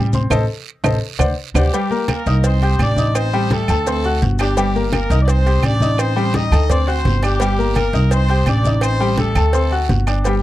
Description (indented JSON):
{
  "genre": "latin, salsa",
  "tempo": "169 BPM",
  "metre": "4/4",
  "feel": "straight",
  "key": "unclear",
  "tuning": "A4 = 440 Hz",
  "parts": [
    { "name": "clear concert grand piano", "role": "accompaniment", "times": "0.0-10.4 s", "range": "G3 to G6", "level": "-21 LUFS", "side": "left 3 dB", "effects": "none" },
    { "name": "upright bass", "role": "bass", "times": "0.0-10.4 s", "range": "G1 to D2", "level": "-17 LUFS", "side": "equal", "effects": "none" },
    { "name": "congas", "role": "percussion", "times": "0.1-10.4 s", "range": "none", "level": "-22 LUFS", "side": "equal", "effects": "none" },
    { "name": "guiro", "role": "percussion", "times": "0.1-10.4 s", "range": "none", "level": "-35 LUFS", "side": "right 12 dB", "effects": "none" },
    { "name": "maracas", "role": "percussion", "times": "0.1-10.4 s", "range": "none", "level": "-34 LUFS", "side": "left 14 dB", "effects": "none" },
    { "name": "claves", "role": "percussion", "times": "0.3-10.3 s", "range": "none", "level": "-27 LUFS", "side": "right 11 dB", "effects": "none" },
    { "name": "cowbell", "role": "percussion", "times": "0.3-10.4 s", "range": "none", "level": "-28 LUFS", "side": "right 4 dB", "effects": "none" },
    { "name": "timbales and agogo bells", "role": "percussion", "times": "0.3-10.4 s", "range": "none", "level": "-29 LUFS", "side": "right 5 dB", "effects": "none" },
    { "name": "brilliant horn section", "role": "melody", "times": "1.6-9.9 s", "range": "G3 to Eb5", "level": "-22 LUFS", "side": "left 1 dB", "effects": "none" }
  ],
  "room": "little or no reverb",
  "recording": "dry, close 1970s-style studio recording",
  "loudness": "-14 LUFS",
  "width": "side -15 dB against mid",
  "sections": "0.0-1.7 A section; 1.7-10.4 B section",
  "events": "band accent 0.3-1.7",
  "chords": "0.3 Adim; 1.0 D7; 1.7 Gm; 2.4 Am7b5; 3.9 D7; 4.6 Gm; 5.3 Am7b5; 6.7 D7; 7.4 Gm; 8.1 Am7b5; 9.5 D7"
}